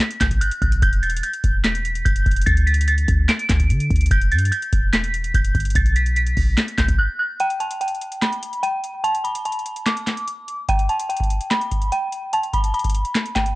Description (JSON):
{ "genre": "hip hop, trap", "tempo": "146 BPM", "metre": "4/4", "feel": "half-time", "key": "unclear", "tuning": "A4 = 435 Hz", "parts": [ { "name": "dark detuned synth bell", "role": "melody", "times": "0.0-13.5 s", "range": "G5 to D7", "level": "-22 LUFS", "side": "right 1 dB", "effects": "chorus, low-pass filter" }, { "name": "booming analog drum machine", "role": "drums", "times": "0.0-13.6 s", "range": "handclaps, hi-hat, kick drum, snare drum", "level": "-21 LUFS", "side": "equal", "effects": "none" }, { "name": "clean 808-style bass", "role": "bass", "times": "0.2-7.0 s", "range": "E1 to D3", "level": "-19 LUFS", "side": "equal", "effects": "none" } ], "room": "little or no reverb", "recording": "dry, gritty hardware recording, cassette tape", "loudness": "-18 LUFS", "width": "side -19 dB against mid", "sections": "0.0-7.4 A section; 7.4-13.6 B section", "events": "break 7.0-7.4", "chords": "0.0 Gmaj7/B; 0.8 Em; 2.5 D5; 4.1 Em; 5.8 Gmaj7/B (rootless); 7.4 N.C.", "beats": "0.00 0.41 | 0.82 1.23 1.65 2.06 | 2.47 2.88 3.29 3.70 | 4.11 4.52 4.93 5.34 | 5.75 6.17 6.58 6.99 | 7.40 7.81 8.22 8.63 | 9.04 9.45 9.86 10.28 | 10.69 11.10 11.51 11.92 | 12.33 12.74 13.15" }